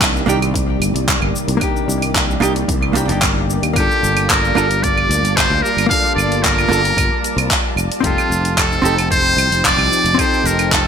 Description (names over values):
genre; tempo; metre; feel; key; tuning
sunset chillout; 112 BPM; 4/4; straight; unclear; A4 = 440 Hz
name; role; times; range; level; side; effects
hollow-body jazz guitar; accompaniment; 0.0-10.9 s; Bb3 to A4; -21 LUFS; moving between left 6 dB and right 6 dB; auto-pan, ping-pong delay
soft string machine; sustained chords; 0.0-10.9 s; C3 to A5; -23 LUFS; equal; ensemble chorus
sustaining fretless electric bass; bass; 0.0-10.9 s; F1 to Eb2; -20 LUFS; equal; none
deep house drum kit; drums; 0.0-10.8 s; claves, handclaps, hi-hat, shaker; -19 LUFS; right 1 dB; small room ambience, gated reverb
electronic kick drum; drums; 0.0-10.8 s; none; -22 LUFS; equal; small room ambience
trumpet with metal mute; melody; 3.8-10.9 s; F4 to F5; -17 LUFS; equal; digital delay
room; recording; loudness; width
moderate plate reverb, RT60 1.8 s, digital ambience; bright 1980s-style digital production; -13 LUFS; side -7 dB against mid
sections
0.0-10.9 A section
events
none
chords
0.0 Cm9; 3.8 Gm9; 8.0 F7